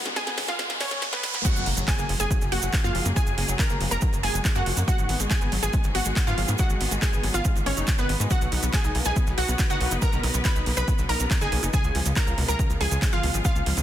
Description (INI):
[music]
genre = uplifting trance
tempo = 140 BPM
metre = 4/4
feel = straight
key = F# major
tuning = A4 = 439 Hz
[part]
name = wide unison pluck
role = melody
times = 0.0-13.7 s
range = B3 to B5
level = -30 LUFS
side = equal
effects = cassette tape, sidechain pumping, dub echo
[part]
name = bright grand piano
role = second line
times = 0.0-13.7 s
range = B4 to B5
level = -36 LUFS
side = right 1 dB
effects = sidechain pumping, dub echo
[part]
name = rich studio string section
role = sustained chords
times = 0.0-13.8 s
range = C#3 to B4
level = -34 LUFS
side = equal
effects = sidechain pumping
[part]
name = riser and impact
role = sound effects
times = 0.0-3.2 s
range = none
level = -31 LUFS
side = right 1 dB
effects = none
[part]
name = wide unison pluck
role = arpeggios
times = 0.1-13.8 s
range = C#2 to D#4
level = -34 LUFS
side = left 3 dB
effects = cassette tape, sidechain pumping, dub echo
[part]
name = tight sequencer bass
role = bass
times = 0.1-13.8 s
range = F#1 to G#2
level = -27 LUFS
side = equal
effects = sidechain pumping
[part]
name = techno drum kit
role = drums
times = 0.1-13.8 s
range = crash cymbal, handclaps, hi-hat, snare drum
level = -31 LUFS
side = right 2 dB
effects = studio reverb
[part]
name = electronic kick drum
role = drums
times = 1.4-13.5 s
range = none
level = -24 LUFS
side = equal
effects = studio reverb
[part]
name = cabasa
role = percussion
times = 1.5-13.8 s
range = none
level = -34 LUFS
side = right 7 dB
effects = none
[sound]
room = little or no reverb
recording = dense, heavily limited modern master, high-pass filter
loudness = -21 LUFS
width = side -12 dB against mid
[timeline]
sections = 0.0-1.4 A section; 1.4-13.8 B section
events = build-up 0.0-1.4; drum fill 0.0-1.4; riser 0.0-1.4; drop 1.4-13.8; impact 1.4-3.2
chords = 0.0 G#m7; 1.4 F#sus2; 4.9 G#m7; 8.3 Bsus2; 11.7 C#7